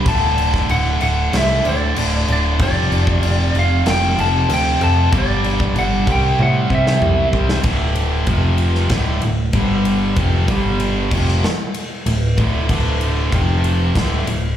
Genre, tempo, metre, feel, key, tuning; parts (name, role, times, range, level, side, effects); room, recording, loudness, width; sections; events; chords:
hard rock; 95 BPM; 4/4; straight; A4 = 440 Hz
lightly driven lead guitar; melody; 0.0-7.3 s; D5 to A5; -20 LUFS; equal; slapback echo
distorted electric guitar; riff; 0.0-14.5 s; D2 to C4; -24 LUFS; right 6 dB; distortion, slapback echo
scooped high-gain guitar; riff; 0.0-14.5 s; D2 to C4; -27 LUFS; right 1 dB; distortion, slapback echo
tight distorted guitar; riff; 0.0-14.5 s; D2 to C4; -25 LUFS; left 10 dB; distortion, slapback echo
picked electric bass; bass; 0.1-14.6 s; D1 to C3; -18 LUFS; equal
big rock drum kit; drums; 0.1-14.4 s; crash cymbal, kick drum, ride cymbal, snare drum, toms; -21 LUFS; left 1 dB
studio ambience; live gig heard through the venue's PA, club reverb; -14 LUFS; side -10 dB against mid
0.0-7.7 A section; 7.7-14.6 B section
drum fill 6.4-7.7
0.1 D5; 2.6 F5; 5.1 G5; 6.1 C; 7.7 D5; 8.3 F5; 8.9 D5; 9.5 G5; 10.2 F5; 10.5 G5; 11.1 D5; 13.3 F5; 14.0 D5